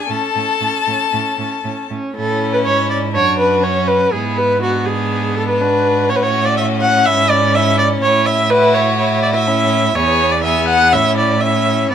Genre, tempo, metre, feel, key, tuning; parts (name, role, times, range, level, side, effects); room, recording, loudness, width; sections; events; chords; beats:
quick classical-period movement for string quartet; 123 BPM; 4/4; rubato; A major; A4 = 439 Hz
rich violin; melody; 0.0-11.9 s; D4 to A5; -22 LUFS; left 7 dB
clear violin; second line; 0.0-11.9 s; B3 to A4; -21 LUFS; left 4 dB
rich viola; accompaniment; 0.0-11.9 s; C#4 to F#5; -15 LUFS; right 1 dB
clear cello; bass; 0.1-11.9 s; E2 to A2; -20 LUFS; right 5 dB
light reverb; minimal, uncompressed stereo recording; -13 LUFS; side -8 dB against mid
0.0-2.2 A section; 2.2-11.9 B section
0.1 A; 3.1 D/F#; 4.1 E7/G#; 6.1 A; 7.1 E/G#; 8.0 A; 10.0 E; 10.9 A
| 0.09 0.61 1.13 1.64 | 2.15 2.65 3.15 3.64 | 4.13 4.62 5.11 5.61 | 6.10 6.58 7.06 7.54 | 8.03 8.51 8.99 9.48 | 9.96 10.45 10.93 11.42 | 11.91